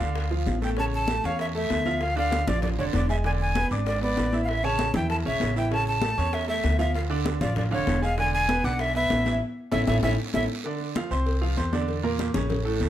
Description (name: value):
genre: latin, salsa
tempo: 194 BPM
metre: 4/4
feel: straight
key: unclear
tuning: A4 = 440 Hz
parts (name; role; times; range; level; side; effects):
- breathy bright jazz flute; melody; 0.0-10.4 s; C#5 to A5; -28 LUFS; equal; none
- bright grand piano; accompaniment; 0.0-12.9 s; A2 to D6; -29 LUFS; right 2 dB; none
- upright bass; bass; 0.0-12.9 s; E1 to E2; -27 LUFS; equal; none
- congas; percussion; 0.0-12.9 s; none; -31 LUFS; left 2 dB; none
- guiro; percussion; 0.0-12.9 s; none; -41 LUFS; right 6 dB; none
- bongos and cowbell; percussion; 0.2-12.9 s; none; -37 LUFS; left 5 dB; none
room: light reverb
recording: none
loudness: -23 LUFS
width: side -12 dB against mid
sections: 0.8-10.6 A section; 10.6-12.9 B section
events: band accent 9.4-10.6; drum fill 10.0-10.6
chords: 0.0 Bb (rootless); 0.8 A; 2.0 Dmadd9; 3.2 E7; 4.5 A; 6.9 Dm; 8.2 E7; 9.4 A; 10.6 Dm7; 11.3 Csus4; 11.9 Bbmaj7#11